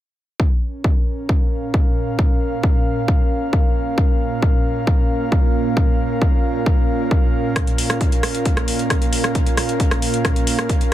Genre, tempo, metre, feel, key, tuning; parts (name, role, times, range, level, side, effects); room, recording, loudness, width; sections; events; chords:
driving peak-time techno; 134 BPM; 4/4; straight; Bb minor; A4 = 440 Hz
deep dark ambient pad; drone; 1.6-10.9 s; Bb2; -26 LUFS; right 3 dB; chorus, built-in reverb, sidechain pumping
electronic kick drum; drums; 0.4-10.8 s; -17 LUFS; equal
airy breathy pad; texture; 0.7-10.9 s; Db4 to F5; -24 LUFS; equal; chorus, sidechain pumping
techno drum kit; drums; 7.6-10.9 s; hi-hat, rim click; -23 LUFS; equal; sidechain pumping on hats
little or no reverb; -16 LUFS; side -13 dB against mid
0.4-10.9 A section
0.4 Bbm